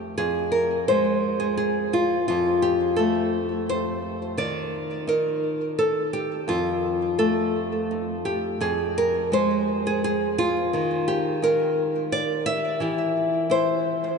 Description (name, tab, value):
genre	folk, solo fingerstyle acoustic guitar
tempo	86 BPM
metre	3/4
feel	straight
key	unclear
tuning	A4 = 440 Hz
part	nylon-string guitar	solo	0.0-14.2 s	F2 to E5	-21 LUFS	equal	tape echo
room	wet cathedral reverb, RT60 6.4 s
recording	in a vast, echoing space, nothing above 10.7 kHz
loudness	-21 LUFS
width	side -5 dB against mid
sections	0.2-14.2 A section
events	none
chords	0.2 Fm; 2.3 Fadd9; 4.4 N.C.; 6.5 F7; 8.6 Fm; 10.7 N.C.; 12.8 C/E